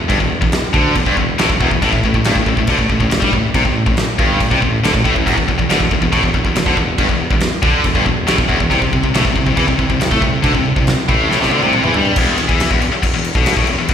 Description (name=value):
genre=heavy metal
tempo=139 BPM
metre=4/4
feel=straight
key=E minor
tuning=A4 = 441 Hz
part: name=distorted electric guitar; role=riff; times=0.0-12.2 s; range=E2 to A3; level=-20 LUFS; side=right 11 dB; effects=overdrive
part: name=heavy high-gain guitar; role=riff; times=0.0-13.9 s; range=E2 to A3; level=-16 LUFS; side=left 7 dB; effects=distortion, slapback echo
part: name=mellow tuba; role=bass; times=0.0-13.9 s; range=E1 to A2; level=-22 LUFS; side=equal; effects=none
part: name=big rock drum kit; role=drums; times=0.1-13.9 s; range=crash cymbal, kick drum, snare drum, toms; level=-17 LUFS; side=equal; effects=none
room=small room ambience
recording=live gig heard through the venue's PA, recital hall reverb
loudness=-12 LUFS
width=side -8 dB against mid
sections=0.0-12.2 A section; 12.2-13.9 B section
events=drum fill 11.3-12.2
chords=0.0 Em; 1.8 Gsus24; 5.3 Em; 8.7 C5; 12.2 E5